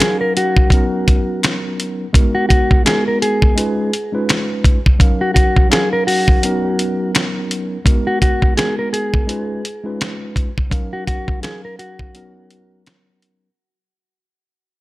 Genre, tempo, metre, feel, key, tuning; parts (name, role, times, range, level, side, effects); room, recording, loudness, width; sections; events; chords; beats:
hip hop, boom-bap hip-hop; 84 BPM; 4/4; swing 58% on 16ths; G# dorian; A4 = 444 Hz
mellow electric guitar; melody; 0.0-12.8 s; F#4 to A#4; -20 LUFS; equal; vibrato effect
mellow tine electric piano; accompaniment; 0.0-13.5 s; F#3 to E#5; -22 LUFS; equal; medium stereo tremolo, cassette tape
dusty soul sampler-style drum kit; drums; 0.0-13.4 s; hi-hat, kick drum, snare drum; -14 LUFS; equal
finger snap; percussion; 0.0-7.3 s; -29 LUFS; left 5 dB
digital ambience; -14 LUFS; side -18 dB against mid
0.0-7.9 A section; 7.9-13.6 B section
break 6.4-7.9, 12.1-13.6; fade-out 7.9-13.6
0.0 D#m9; 0.7 Bmaj9; 2.1 G#m9; 3.6 C#9; 5.0 D#m9; 6.4 Bmaj9; 7.9 G#m9; 9.3 C#9; 10.7 D#m9; 12.1 Bmaj9
0.00 0.71 1.43 | 2.14 2.86 3.57 4.29 | 5.00 5.71 6.43 7.14 | 7.86 8.57 9.29 10.00 | 10.71 11.43 12.14 12.86